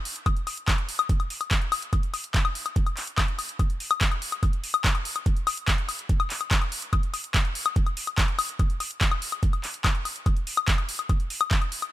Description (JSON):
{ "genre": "trance", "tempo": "144 BPM", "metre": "4/4", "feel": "straight", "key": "none", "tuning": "none", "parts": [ { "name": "drum and bass drum kit", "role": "drums", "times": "0.1-11.9 s", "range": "handclaps, hi-hat, woodblock", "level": "-26 LUFS", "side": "left 3 dB", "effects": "overdrive" }, { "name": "electronic kick drum", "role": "drums", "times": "0.3-11.6 s", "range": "none", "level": "-24 LUFS", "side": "right 1 dB", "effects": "overdrive" } ], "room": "little or no reverb", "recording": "none", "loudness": "-23 LUFS", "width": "side -15 dB against mid", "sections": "0.0-11.9 A section", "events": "none", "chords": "none" }